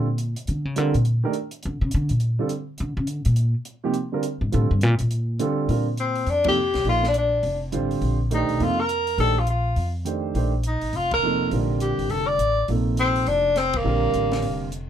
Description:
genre	modal jazz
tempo	206 BPM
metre	4/4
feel	swing 62% on 8ths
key	Bb major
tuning	A4 = 439 Hz
part	warm baby grand piano	accompaniment	0.0-14.7 s	C3 to D5	-26 LUFS	right 4 dB	none
part	upright bass	bass	0.0-14.9 s	F1 to D3	-23 LUFS	equal	none
part	compact cocktail drum kit	drums	0.2-14.8 s	hi-hat, kick drum, ride cymbal, snare drum	-38 LUFS	left 2 dB	none
part	warm tenor saxophone	melody	6.0-14.7 s	Bb3 to D5	-22 LUFS	left 2 dB	none
room	light reverb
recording	none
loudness	-20 LUFS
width	side -10 dB against mid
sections	0.0-5.7 A section; 5.7-14.9 B section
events	upright bass solo 0.0-5.7; band accent 6.4, 11.1, 13.7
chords	0.0 Bbmaj9

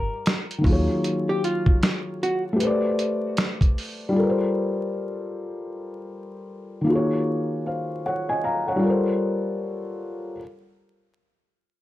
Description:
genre	lo-fi hip hop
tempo	77 BPM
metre	4/4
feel	swing 62% on 16ths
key	G minor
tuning	A4 = 440 Hz
part	archtop guitar, miked and amplified	melody	0.0-2.4 s	F4 to Bb4	-28 LUFS	equal	low-pass filter, tape echo, plate reverb
part	felt-muted upright piano	accompaniment	0.0-10.4 s	Eb3 to Bb5	-24 LUFS	left 1 dB	cassette tape, low-pass filter, plate reverb
part	upright bass	bass	0.0-0.9 s	Eb2	-27 LUFS	equal	none
part	dusty soul sampler-style drum kit	drums	0.3-4.0 s	finger snaps, hi-hat, kick drum, snare drum	-22 LUFS	equal	none
room	moderate studio reverb, RT60 0.6 s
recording	dark, warm production, vinyl crackle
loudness	-21 LUFS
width	side -15 dB against mid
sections	0.0-10.4 A section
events	none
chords	0.0 Gm7; 0.6 Ebm11; 2.6 Am11; 4.1 Gm11; 6.9 Ebm11; 8.8 Gm11

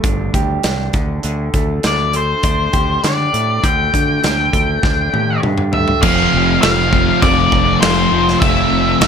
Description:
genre	quiet-loud alternative rock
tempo	100 BPM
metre	4/4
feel	straight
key	unclear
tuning	A4 = 440 Hz
part	electric guitar through a small old amp	arpeggios	0.0-6.0 s	D3 to G4	-22 LUFS	right 2 dB	wide subtle chorus
part	growling fingered electric bass	bass	0.0-9.1 s	F1 to D3	-20 LUFS	equal	overdrive
part	big rock drum kit	drums	0.0-9.1 s	crash cymbal, hi-hat, kick drum, snare drum, toms	-18 LUFS	equal	none
part	octave-fuzz lead guitar	melody	1.9-9.1 s	C5 to G5	-16 LUFS	left 2 dB	distortion
part	fuzz guitar	riff	6.0-9.1 s	F2 to F4	-20 LUFS	equal	distortion
part	sludgy distorted guitar	riff	6.0-9.1 s	F3 to F4	-18 LUFS	left 12 dB	overdrive
part	thick fuzz guitar	riff	6.0-9.1 s	F2 to F3	-19 LUFS	right 13 dB	distortion
room	light reverb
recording	none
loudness	-12 LUFS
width	side -7 dB against mid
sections	0.0-6.0 A section; 6.0-9.1 B section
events	drum fill 4.8-6.0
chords	0.0 Gsus2; 0.9 Dsus4; 6.0 Fmaj7

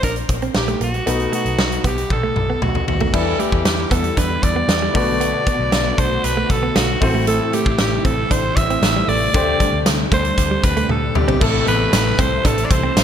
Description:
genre	1980s-style pop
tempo	116 BPM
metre	4/4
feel	straight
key	A dorian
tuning	A4 = 441 Hz
part	raspy alto saxophone	melody	0.0-13.0 s	F#4 to E5	-21 LUFS	right 1 dB	none
part	clear concert grand piano	accompaniment	0.0-13.0 s	A2 to D5	-26 LUFS	left 4 dB	none
part	direct-recorded clean electric guitar	riff	0.0-13.0 s	G3 to E4	-26 LUFS	right 4 dB	analog chorus
part	vintage muted picked electric bass	bass	0.0-13.0 s	A1 to E2	-23 LUFS	equal	none
part	huge arena drum kit	drums	0.0-13.0 s	crash cymbal, hi-hat, kick drum, snare drum, tambourine, toms	-20 LUFS	equal	none
part	string machine, violas	sustained chords	3.1-13.0 s	C3 to F#4	-26 LUFS	equal	ensemble chorus
part	direct-recorded clean electric guitar	second line	11.2-13.0 s	G3 to D4	-28 LUFS	left 8 dB	none
room	moderate plate reverb, RT60 1.9 s, small room ambience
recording	bright 1980s-style digital production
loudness	-15 LUFS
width	side -9 dB against mid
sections	0.0-3.1 A section; 3.1-11.4 B section; 11.4-13.0 C section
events	drum fill 2.1-3.1, 10.9-11.4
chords	0.0 Bb; 1.1 B7; 3.1 Em7; 4.9 Bm7; 7.0 Am; 9.3 D7sus4; 11.4 Am

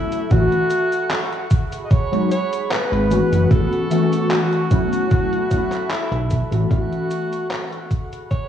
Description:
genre	vaporwave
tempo	75 BPM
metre	4/4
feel	swing 54% on 16ths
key	A major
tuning	A4 = 440 Hz
part	breathy alto saxophone	melody	0.0-8.5 s	E4 to D#5	-24 LUFS	equal	tape echo
part	warbly lo-fi synth keys	accompaniment	0.0-7.9 s	E3 to F#4	-21 LUFS	left 1 dB	ensemble chorus
part	warbly tape-like pad	sustained chords	0.0-8.5 s	G#4 to C#6	-30 LUFS	right 2 dB	chorus, built-in reverb
part	detuned 8-bit digital drum machine	drums	0.1-8.5 s	cabasa, handclaps, hi-hat	-27 LUFS	equal	vintage 12-bit sampler grit, gated reverb
part	chorused synth bass	bass	0.3-6.9 s	F#1 to B1	-19 LUFS	equal	none
part	electronic kick drum	drums	0.3-8.5 s	none	-19 LUFS	equal	vintage 12-bit sampler grit
room	light reverb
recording	cassette tape, studio ambience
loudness	-17 LUFS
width	side -9 dB against mid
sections	0.0-8.5 A section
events	fade-out 4.6-8.5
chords	0.3 A6; 1.5 G#m7; 3.5 A6; 7.9 G#m7

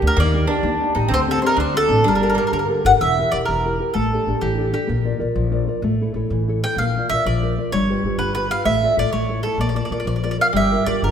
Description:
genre	italian folk, Italian serenade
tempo	127 BPM (dotted quarters)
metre	6/8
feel	straight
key	G harmonic minor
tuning	A4 = 441 Hz
part	mandolin	melody	0.0-11.1 s	G4 to G5	-20 LUFS	equal	none
part	bowl-back mandolin	second line	0.0-2.8, 10.5-11.1 s	Bb3 to G4	-24 LUFS	right 2 dB	none
part	nylon-string guitar	accompaniment	0.0-11.1 s	D3 to D5	-22 LUFS	left 1 dB	none
part	upright bass	bass	0.0-11.1 s	E1 to Eb3	-23 LUFS	equal	none
room	wet scoring stage reverb, RT60 1.8 s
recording	minimal, uncompressed stereo recording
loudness	-17 LUFS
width	side -8 dB against mid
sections	0.0-3.0 A section; 3.0-11.1 B section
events	none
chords	0.2 Ebmaj7; 1.1 D7sus4; 1.6 D7; 2.0 Gmadd9; 3.0 Edim; 4.0 A7sus4; 4.9 Bb; 5.8 A; 6.8 Bb; 7.7 G7; 8.7 Dm/A; 9.1 A; 9.6 Bb; 10.5 Gm7

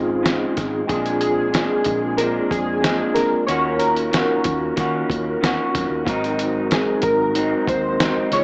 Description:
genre	indie pop, bedroom pop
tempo	93 BPM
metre	4/4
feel	straight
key	unclear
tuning	A4 = 440 Hz
part	warbly lo-fi synth keys	melody	0.0-8.4 s	F4 to Db5	-24 LUFS	equal	analog chorus, plate reverb, analog delay
part	electric guitar through a small old amp	accompaniment	0.0-8.4 s	Ab2 to Gb4	-26 LUFS	equal	subtle chorus, vibrato effect
part	percussive tonewheel organ	accompaniment	0.0-8.4 s	Bb3 to Bb4	-26 LUFS	equal	fast rotary speaker
part	vintage muted fingered electric bass	bass	0.0-8.4 s	Ab1 to Eb3	-36 LUFS	equal	none
part	lo-fi sampler-style drum kit	drums	0.3-8.4 s	hi-hat, kick drum, snare drum	-26 LUFS	equal	none
room	wet studio ambience, RT60 0.5 s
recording	small speaker sound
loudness	-20 LUFS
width	mono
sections	0.0-8.4 A section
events	none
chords	0.0 Dbmaj7; 0.9 Bb7; 3.5 Ebm7; 6.1 Ab7

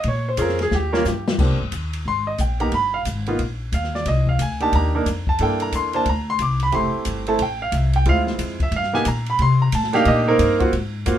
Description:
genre	jazz piano trio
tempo	180 BPM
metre	4/4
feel	swing 63% on 8ths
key	unclear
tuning	A4 = 440 Hz
part	warm grand piano	melody	0.0-11.2 s	Ab3 to D6	-20 LUFS	right 2 dB	none
part	upright bass	bass	0.0-11.2 s	F1 to C3	-22 LUFS	left 1 dB	none
part	open jazz drum kit	drums	0.0-11.2 s	crash cymbal, hi-hat, kick drum, ride cymbal, snare drum	-28 LUFS	left 2 dB	none
room	moderate club reverb, RT60 0.5 s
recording	minimal, uncompressed stereo recording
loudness	-18 LUFS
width	side -10 dB against mid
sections	0.0-1.4 A section; 1.4-11.2 A section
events	grand piano solo 0.0-11.2; drum fill 0.7-1.4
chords	0.0 Bbm7; 0.7 Eb; 1.4 Abmaj9; 2.7 G7alt; 4.1 Cm9; 5.4 C13; 6.7 Fmaj9; 8.1 Dm7b5; 8.7 G; 9.4 Cm9

